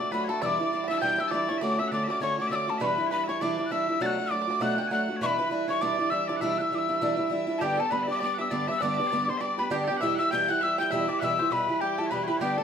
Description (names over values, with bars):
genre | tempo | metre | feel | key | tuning
celtic folk, Celtic reel | 200 BPM | 4/4 | swing 58% on 8ths | E dorian, G major from 7.6 s | A4 = 440 Hz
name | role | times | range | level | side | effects
breathy mellow mid whistle | melody | 0.0-12.6 s | G5 to A6 | -28 LUFS | left 3 dB | none
bluegrass banjo | second line | 0.0-12.6 s | G4 to G5 | -36 LUFS | right 5 dB | none
loud bright bagpipes | second line | 0.0-12.6 s | G4 to A5 | -36 LUFS | left 3 dB | none
fingerpicked steel-string acoustic guitar | accompaniment | 0.0-12.6 s | E2 to G4 | -29 LUFS | right 2 dB | none
room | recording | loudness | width
moderate large studio reverb, RT60 1.1 s | band playing live in one room | -24 LUFS | side -7 dB against mid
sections
0.0-7.6 A section; 7.6-12.6 B section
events
none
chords
0.4 Em7; 1.6 Dmaj7; 2.8 Em7; 4.0 Bm7; 5.2 Em7; 7.6 G; 10.0 Em